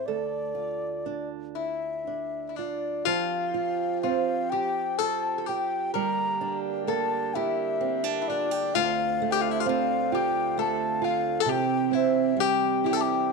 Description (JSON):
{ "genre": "celtic folk, Celtic slow air", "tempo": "39-45 BPM (dotted quarters)", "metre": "6/8", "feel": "rubato", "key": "D minor", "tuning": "A4 = 440 Hz", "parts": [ { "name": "baroque flute", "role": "melody", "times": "0.0-13.3 s", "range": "D5 to Bb5", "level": "-29 LUFS", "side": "left 3 dB", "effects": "none" }, { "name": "fingerpicked old ladder-braced acoustic guitar", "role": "accompaniment", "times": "0.0-13.3 s", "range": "D2 to A4", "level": "-28 LUFS", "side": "right 14 dB", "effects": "none" }, { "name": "lap resonator guitar", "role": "second line", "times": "1.6-13.3 s", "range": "D4 to Bb4", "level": "-30 LUFS", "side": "left 13 dB", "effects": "none" }, { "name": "pedal harmonium", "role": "sustained chords", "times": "3.0-13.3 s", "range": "D3 to G4", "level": "-37 LUFS", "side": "left 13 dB", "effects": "none" } ], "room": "moderate spring reverb, RT60 1.2 s, small room ambience", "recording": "1960s-style stereo with parts hard left and right", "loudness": "-24 LUFS", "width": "side -3 dB against mid", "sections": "0.0-3.1 A section; 3.1-13.3 B section", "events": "none", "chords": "0.1 Dm; 3.1 Fsus2; 5.9 Gm; 8.8 Dm7; 11.5 C" }